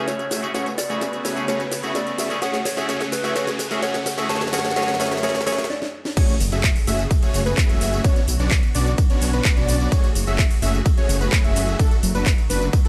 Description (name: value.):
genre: EDM, festival progressive house.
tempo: 128 BPM.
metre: 4/4.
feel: straight.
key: F# minor.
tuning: A4 = 440 Hz.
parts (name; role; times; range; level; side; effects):
soft struck synth lead; melody; 0.0-5.9 s; B4 to A5; -31 LUFS; equal; chorus, delay.
clean electric guitar; accompaniment; 0.0-5.6 s; C#3 to G#4; -31 LUFS; equal; tremolo, sidechain pumping.
rich studio string section; sustained chords; 0.0-12.9 s; F#2 to B4; -37 LUFS; equal; sidechain pumping, low-pass filter.
unison lead; arpeggios; 0.0-12.9 s; A4 to E5; -31 LUFS; equal; sidechain pumping, delay.
supersaw chords; riff; 0.0-12.9 s; A3 to E5; -30 LUFS; equal; sidechain pumping, delay.
riser and impact; sound effects; 0.0-8.0 s; none; -36 LUFS; equal; none.
house drum kit; drums; 0.1-12.9 s; crash cymbal, handclaps, hi-hat, ride cymbal, snare drum, tambourine; -29 LUFS; equal; overdrive.
electronic kick drum; drums; 6.2-12.8 s; none; -20 LUFS; equal; none.
detuned saw bass; bass; 6.4-12.7 s; F#1 to B1; -24 LUFS; equal; chorus, tube saturation, sidechain pumping.
room: light reverb, digital ambience.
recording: lossy compression artefacts.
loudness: -21 LUFS.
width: mono.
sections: 0.0-6.2 A section; 6.2-12.9 B section.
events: build-up 0.0-6.2; drum fill 0.0-5.7, 5.7-6.2; riser 0.0-5.7; filter sweep on analog synth lead 0.0-6.2; break 5.7-6.2; drop 6.2-12.9; impact 6.2-8.0.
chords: 0.0 F#madd9; 0.5 Bmadd9; 2.4 F#madd9; 4.3 D/F#; 6.2 F#madd9; 8.0 Bmadd9; 9.9 F#madd9; 11.8 D/F#.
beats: 0.08 | 0.55 1.01 1.48 1.95 | 2.42 2.89 3.36 3.83 | 4.29 4.76 5.23 5.70 | 6.17 6.64 7.11 7.58 | 8.04 8.51 8.98 9.45 | 9.92 10.39 10.86 11.33 | 11.79 12.26 12.73.